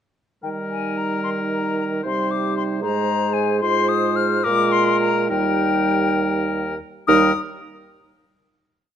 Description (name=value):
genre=quick classical-period movement for wind quintet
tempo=66-77 BPM (dotted quarters)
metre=6/8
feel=rubato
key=Eb major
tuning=A4 = 441 Hz
part: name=silver concert flute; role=melody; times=0.4-7.4 s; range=G5 to F6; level=-23 LUFS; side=left 7 dB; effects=none
part: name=warm oboe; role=second line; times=0.4-7.3 s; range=Bb4 to C5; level=-25 LUFS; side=left 4 dB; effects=none
part: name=dark clarinet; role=accompaniment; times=0.4-7.3 s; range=Eb4 to Ab4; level=-25 LUFS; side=right 8 dB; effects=none
part: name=mellow French horn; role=accompaniment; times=0.4-7.3 s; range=G3 to Ab3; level=-27 LUFS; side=equal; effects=none
part: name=mellow bassoon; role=bass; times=0.4-7.3 s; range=Eb2 to Eb3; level=-25 LUFS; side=right 2 dB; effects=none
room=moderate recital hall reverb, RT60 1.6 s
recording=close, detailed microphones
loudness=-18 LUFS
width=side -9 dB against mid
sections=0.4-7.1 A section; 7.1-8.8 final chord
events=none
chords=0.4 Eb; 2.1 Cm; 2.8 Ab; 3.6 Fm/Ab; 4.5 Bb5; 5.3 Eb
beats=| 0.44 1.26 | 2.05 2.83 | 3.63 4.45 | 5.30 6.18 | 7.08